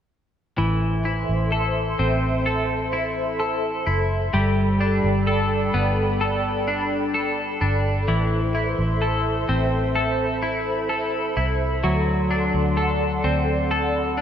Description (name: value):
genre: dream pop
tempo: 64 BPM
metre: 4/4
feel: straight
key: A dorian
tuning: A4 = 438 Hz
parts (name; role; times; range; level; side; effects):
- hollow soft pad; sustained chords; 0.6-14.2 s; A4 to C6; -26 LUFS; right 1 dB; ensemble chorus, shimmer reverb
- twelve-string electric guitar; arpeggios; 0.6-14.2 s; E3 to A4; -23 LUFS; left 1 dB; wide subtle chorus, ping-pong delay, shimmer reverb
- vintage muted fingered electric bass; bass; 0.6-14.2 s; F#1 to D2; -24 LUFS; equal; none
room: moderate lush hall reverb, RT60 2.3 s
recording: rough home demo mix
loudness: -20 LUFS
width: side -9 dB against mid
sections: 0.6-14.2 A section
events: none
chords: 0.6 Am; 4.3 Gadd9; 8.1 Am; 11.8 D7